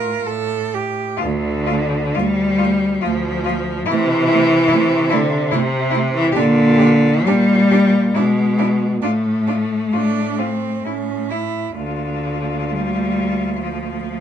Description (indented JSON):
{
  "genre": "classical, lyrical piece for cello ensemble",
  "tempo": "59-75 BPM",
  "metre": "3/4",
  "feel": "rubato",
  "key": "D minor",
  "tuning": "A4 = 440 Hz",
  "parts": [
    { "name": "clear cello", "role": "melody", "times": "0.0-14.2 s", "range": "E4 to G4", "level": "-26 LUFS", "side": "left 4 dB", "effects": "none" },
    { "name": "rich cello", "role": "second line", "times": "0.0-14.2 s", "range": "A3 to Bb4", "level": "-25 LUFS", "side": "right 9 dB", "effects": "none" },
    { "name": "rich cello", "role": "accompaniment", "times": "0.0-14.2 s", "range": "C3 to A3", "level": "-17 LUFS", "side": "left 2 dB", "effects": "none" },
    { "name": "clear cello", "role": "bass", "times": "0.0-14.2 s", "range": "D2 to C3", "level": "-21 LUFS", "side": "right 2 dB", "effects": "none" }
  ],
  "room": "light reverb",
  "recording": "dark, warm production",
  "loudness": "-15 LUFS",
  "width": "side -9 dB against mid",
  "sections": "0.0-1.2 A section; 1.2-14.2 B section",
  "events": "none",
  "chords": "0.2 Gsus2/A; 1.2 Dm; 3.9 Am/C (rootless); 6.3 Gm/Bb; 8.1 E/B (rootless); 9.0 D5/A; 11.8 Dm",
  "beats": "0.23 | 1.19 2.16 3.02 | 3.87 4.71 5.53 | 6.33 7.25 8.14 | 9.02 9.92 10.83 | 11.75 12.73 13.62"
}